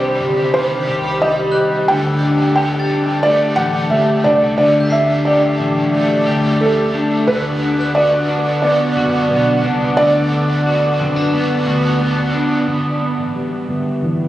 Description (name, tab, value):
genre	dream pop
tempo	89 BPM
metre	4/4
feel	straight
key	unclear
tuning	A4 = 440 Hz
part	felt-muted upright piano	melody	0.0-12.0 s	A4 to G5	-17 LUFS	right 1 dB	ping-pong delay
part	cranked stack guitar	accompaniment	0.0-13.2 s	C3 to G4	-24 LUFS	right 2 dB	overdrive, harmonic tremolo, ensemble chorus
part	warbly tape-like pad	sustained chords	0.0-14.3 s	G4 to D6	-23 LUFS	equal	chorus, built-in reverb, low-pass filter
part	electric guitar at the edge of break-up	arpeggios	0.0-14.3 s	C3 to G4	-18 LUFS	left 1 dB	analog chorus, low-pass filter, ping-pong delay
part	vintage muted picked electric bass	bass	0.0-14.3 s	F#1 to D2	-24 LUFS	equal	none
part	glockenspiel with hard plastic mallets	texture	0.0-12.1 s	F#6 to C7	-33 LUFS	left 1 dB	ping-pong delay
room	moderate huge ambient reverb, RT60 9.6 s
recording	recorded on a phone in the room, club reverb, nothing above 10.8 kHz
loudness	-13 LUFS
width	side -14 dB against mid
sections	0.0-12.7 A section; 12.7-14.3 B section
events	filter sweep 12.7-14.3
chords	0.0 Cmadd9; 1.9 Dsus4; 7.3 Bm; 12.7 G6